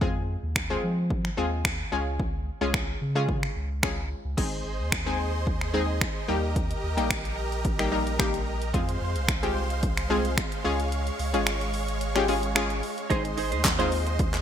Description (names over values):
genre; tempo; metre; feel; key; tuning
dance-pop; 110 BPM; 4/4; straight; Ab major; A4 = 441 Hz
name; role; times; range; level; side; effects
analog pluck; accompaniment; 0.0-14.3 s; G3 to Bb4; -30 LUFS; left 2 dB; chorus, sidechain pumping
warm sub bass; bass; 0.0-14.4 s; Ab1 to F3; -30 LUFS; equal; sidechain pumping
deep house drum kit; drums; 0.0-14.4 s; crash cymbal, finger snaps, handclaps, hi-hat, kick drum, snare drum; -28 LUFS; equal; gated reverb
supersaw chords; sustained chords; 4.4-14.4 s; Ab3 to Db6; -33 LUFS; right 2 dB; sidechain pumping
direct-recorded clean electric guitar; riff; 13.1-14.4 s; Eb4 to C5; -31 LUFS; right 6 dB; analog chorus
group handclap; percussion; 13.7-13.8 s; none; barely audible; none; none
room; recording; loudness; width
light reverb; bright 1980s-style digital production; -24 LUFS; side -9 dB against mid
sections
0.0-4.4 A section; 4.4-14.4 B section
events
kick muted 10.9-13.1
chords
0.0 Fm; 1.9 Db; 4.4 Ab; 6.3 Eb; 8.7 Fm; 10.6 Db; 13.1 Ab